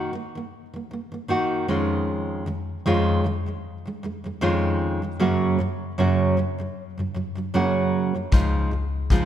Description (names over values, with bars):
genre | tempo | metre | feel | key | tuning
acoustic pop | 77 BPM | 4/4 | swing 55% on 16ths | Db major | A4 = 441 Hz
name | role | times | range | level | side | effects
nylon-string guitar | accompaniment | 0.0-9.3 s | F2 to Gb4 | -22 LUFS | right 1 dB | none
upright bass | bass | 8.3-9.3 s | Db2 | -24 LUFS | left 2 dB | none
kick drum | drums | 8.3-9.3 s | none | -19 LUFS | left 2 dB | none
room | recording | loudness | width
wet concert hall reverb, RT60 2.1 s | recorded in a church or concert hall | -21 LUFS | side -10 dB against mid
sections
0.0-9.3 A section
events
none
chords
0.0 Ebm; 1.7 Dbadd9/F; 5.2 Gb; 8.3 Dbadd9